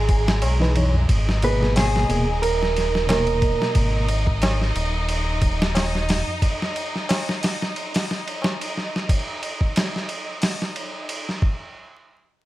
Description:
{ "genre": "trip hop", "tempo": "90 BPM", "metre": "4/4", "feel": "swing 55% on 16ths", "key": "G# minor", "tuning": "A4 = 440 Hz", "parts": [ { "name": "mellow electric guitar", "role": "melody", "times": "0.0-3.7 s", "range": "G#4 to B4", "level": "-25 LUFS", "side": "right 4 dB", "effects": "dub echo" }, { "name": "clear chamber violin section", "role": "sustained chords", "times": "0.0-11.4 s", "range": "G#3 to A#5", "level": "-30 LUFS", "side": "equal", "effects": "vintage 12-bit sampler grit" }, { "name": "round analog bass", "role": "bass", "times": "0.0-6.2 s", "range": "D#1 to B1", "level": "-22 LUFS", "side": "equal", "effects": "tube saturation" }, { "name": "dusty soul sampler-style drum kit", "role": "drums", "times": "0.1-11.6 s", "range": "hi-hat, kick drum, ride cymbal, snare drum", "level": "-23 LUFS", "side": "equal", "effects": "studio reverb" }, { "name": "tabla", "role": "percussion", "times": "0.4-8.6 s", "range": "none", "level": "-31 LUFS", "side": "left 1 dB", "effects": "none" }, { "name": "mellow reed electric piano", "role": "accompaniment", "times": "0.6-4.1 s", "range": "B2 to C#5", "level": "-26 LUFS", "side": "equal", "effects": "fast tremolo, harmonic tremolo, tape echo" } ], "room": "little or no reverb", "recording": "vinyl crackle", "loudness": "-20 LUFS", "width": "side -16 dB against mid", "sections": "0.0-11.8 A section", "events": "none", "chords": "0.0 Emaj7/G#; 1.1 G#madd9; 6.4 N.C." }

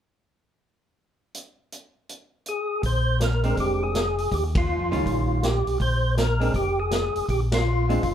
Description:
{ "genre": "soul jazz organ trio", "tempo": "162 BPM", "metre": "4/4", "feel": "swing 64% on 8ths", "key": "Bb mixolydian", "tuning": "A4 = 442 Hz", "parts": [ { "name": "vintage drum kit", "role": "drums", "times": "1.3-8.1 s", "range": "hi-hat, kick drum, ride cymbal, snare drum", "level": "-28 LUFS", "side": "right 1 dB", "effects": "none" }, { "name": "percussive tonewheel organ", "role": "melody", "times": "2.5-8.1 s", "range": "F4 to C5", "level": "-26 LUFS", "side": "left 1 dB", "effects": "slow rotary speaker, overdrive, chorus vibrato, plate reverb" }, { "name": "mellow tonewheel organ", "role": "bass", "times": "2.8-8.1 s", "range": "F1 to F2", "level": "-25 LUFS", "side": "equal", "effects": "chorus vibrato, slow rotary speaker" }, { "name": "archtop guitar, miked and amplified", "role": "accompaniment", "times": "3.4-8.0 s", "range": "Eb3 to F4", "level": "-28 LUFS", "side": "right 2 dB", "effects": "none" } ], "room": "wet club reverb, RT60 0.8 s", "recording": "heard from further back in the room", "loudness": "-21 LUFS", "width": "side -9 dB against mid", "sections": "1.4-2.8 A section; 2.8-8.1 B section", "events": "band accent 4.5, 7.5", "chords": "1.4 N.C.; 2.8 Bb9; 4.3 Eb9; 5.8 Bb7sus2" }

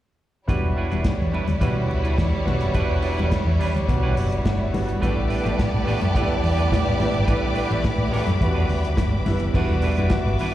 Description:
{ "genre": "disco", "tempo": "106 BPM", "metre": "4/4", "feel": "straight", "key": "unclear", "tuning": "A4 = 439 Hz", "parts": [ { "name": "rich studio violin section", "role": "second line", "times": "0.5-9.5 s", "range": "G3 to D5", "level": "-28 LUFS", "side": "right 1 dB", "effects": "slapback echo" }, { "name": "clear concert grand piano", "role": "accompaniment", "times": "0.5-10.5 s", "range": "G3 to F#5", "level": "-28 LUFS", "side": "equal", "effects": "slapback echo" }, { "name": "semi-hollow electric guitar", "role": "accompaniment", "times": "0.5-10.5 s", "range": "G3 to B4", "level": "-31 LUFS", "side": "right 7 dB", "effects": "none" }, { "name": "hollow-body short-scale fingered electric bass", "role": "bass", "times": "0.5-10.4 s", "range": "E1 to A2", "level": "-23 LUFS", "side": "equal", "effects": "none" }, { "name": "warm soul drum kit", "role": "drums", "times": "0.5-10.5 s", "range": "crash cymbal, hi-hat, kick drum, snare drum", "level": "-25 LUFS", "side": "equal", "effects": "none" }, { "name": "congas", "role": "percussion", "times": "0.9-10.5 s", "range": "none", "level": "-32 LUFS", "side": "left 5 dB", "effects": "none" }, { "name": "clear studio string section", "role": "sustained chords", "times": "5.0-10.5 s", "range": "B4 to D6", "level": "-30 LUFS", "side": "left 2 dB", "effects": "none" } ], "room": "studio reverb", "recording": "live gig heard through the venue's PA, recital hall reverb", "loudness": "-19 LUFS", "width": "side -13 dB against mid", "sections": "0.5-9.5 A section; 9.5-10.5 B section", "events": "grand piano fill 4.2-5.0", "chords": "0.5 Em7; 5.0 A9sus4; 9.5 Em7" }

